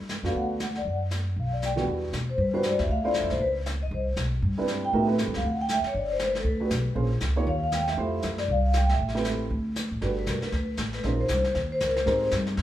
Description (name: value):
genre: jazz, small-group swing and bop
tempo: 236 BPM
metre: 4/4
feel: swing 59% on 8ths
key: G major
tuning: A4 = 441 Hz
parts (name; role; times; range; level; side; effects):
- upright bass; bass; 0.0-12.6 s; G1 to B2; -28 LUFS; equal; none
- vintage brush drum kit; drums; 0.1-12.6 s; brushed snare drum, hi-hat, snare drum; -35 LUFS; equal; none
- dark upright piano; accompaniment; 0.2-12.6 s; E2 to Db5; -30 LUFS; right 2 dB; none
- vibraphone with medium mallets; melody; 0.3-12.3 s; A4 to G5; -28 LUFS; left 1 dB; none
room: wet large studio reverb, RT60 1.1 s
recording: band playing live in one room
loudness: -24 LUFS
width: side -12 dB against mid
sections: 0.0-1.9 A section; 1.9-10.0 B section; 10.0-12.6 C section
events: vibraphone solo 10.0-12.6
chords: 0.0 Gmaj9; 0.9 N.C.; 1.4 Bm; 1.9 Em7; 2.9 Dm7; 3.4 N.C.; 3.9 Cmaj7; 4.9 Am7; 5.4 Dadd9; 5.9 G; 7.0 Bbm7; 7.5 Ebadd9; 8.0 Fmaj7; 9.0 Am7; 9.5 D5; 10.0 Gmaj9; 11.0 Bbm11; 11.5 Bbmadd9; 12.1 Abmaj9